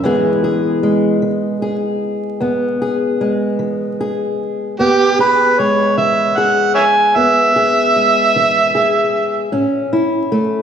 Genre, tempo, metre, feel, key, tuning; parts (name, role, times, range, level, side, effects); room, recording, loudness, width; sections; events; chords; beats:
blues; 51 BPM (dotted quarters); 12/8; straight; E major; A4 = 439 Hz
fingerpicked old ladder-braced acoustic guitar; accompaniment; 0.0-10.6 s; E2 to G#4; -16 LUFS; left 1 dB
overdriven harmonica; melody; 4.8-9.5 s; G4 to G#5; -13 LUFS; right 2 dB
wet concert hall reverb, RT60 2.1 s; recorded in a church or concert hall, vinyl crackle, studio reverb; -13 LUFS; side -8 dB against mid
0.0-10.6 A section
0.0 E; 9.5 A
| 0.04 1.23 2.42 3.61 | 4.79 5.98 7.17 8.35 | 9.53